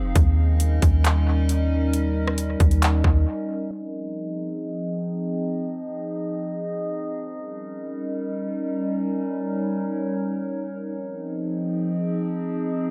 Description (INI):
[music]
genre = hip hop, atmospheric cloud-rap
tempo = free time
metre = none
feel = none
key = F minor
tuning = A4 = 439 Hz
[part]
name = warbly tape-like pad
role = sustained chords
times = 0.0-12.9 s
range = F3 to F5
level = -28 LUFS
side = equal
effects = chorus, built-in reverb, sidechain pumping, low-pass filter
[part]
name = soft 808-style bass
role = bass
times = 0.0-3.3 s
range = F1 to Eb2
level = -22 LUFS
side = equal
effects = none
[part]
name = trap drum kit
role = drums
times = 0.2-3.1 s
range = handclaps, hi-hat, kick drum, rim click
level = -24 LUFS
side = equal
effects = none
[sound]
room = little or no reverb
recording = echo-heavy mix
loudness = -25 LUFS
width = mono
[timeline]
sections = 0.0-3.7 A section; 3.7-12.9 B section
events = break 3.3-3.7; filter sweep on ambient pad 3.7-12.9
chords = 0.2 Eb7; 3.7 Fm7; 7.3 Eb7; 10.8 Fm7